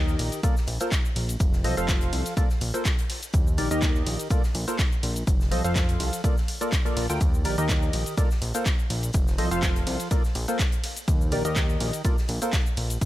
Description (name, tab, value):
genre	piano house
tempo	124 BPM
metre	4/4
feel	swing 54% on 16ths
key	Bb major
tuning	A4 = 440 Hz
part	percussive organ stab	riff	0.0-12.5 s	Eb3 to G5	-29 LUFS	equal	analog chorus, sidechain pumping, tape echo
part	fat analog bass	bass	0.0-13.1 s	F1 to Eb2	-28 LUFS	equal	sidechain pumping
part	punchy analog drum machine	drums	0.1-13.1 s	cabasa, handclaps, hi-hat, ride cymbal	-32 LUFS	equal	none
part	big rock drum kit	drums	0.2-13.1 s	hi-hat, shaker, snare drum	-42 LUFS	left 2 dB	none
part	electronic kick drum	drums	0.4-13.1 s	none	-24 LUFS	equal	none
room	studio ambience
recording	none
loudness	-22 LUFS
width	side -15 dB against mid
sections	0.0-13.1 A section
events	none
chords	0.4 Bbmaj7; 1.4 F7; 2.4 Bbmaj7; 3.3 Ebmaj7; 4.3 Bbmaj7; 5.3 F7; 6.2 Bbmaj7; 7.2 Ebmaj7; 8.2 Bbmaj7; 9.1 F7; 10.1 Bbmaj7; 11.1 Ebmaj7; 12.0 Bbmaj7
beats	0.43 0.92 | 1.40 1.89 2.37 2.85 | 3.34 3.82 4.30 4.79 | 5.27 5.76 6.24 6.72 | 7.21 7.69 8.18 8.66 | 9.14 9.63 10.11 10.60 | 11.08 11.56 12.05 12.53 | 13.01